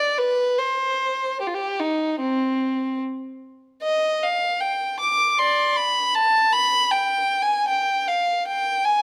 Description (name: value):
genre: classical, baroque-style suite movement for unaccompanied violin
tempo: 71-80 BPM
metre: 4/4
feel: rubato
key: C minor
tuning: A4 = 441 Hz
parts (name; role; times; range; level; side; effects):
- warm violin; solo; 0.0-9.0 s; C4 to D6; -22 LUFS; equal; none
room: moderate recital hall reverb, RT60 1.4 s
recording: close, detailed microphones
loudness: -22 LUFS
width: mono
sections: 0.0-3.8 A section; 3.8-9.0 B section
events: none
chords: none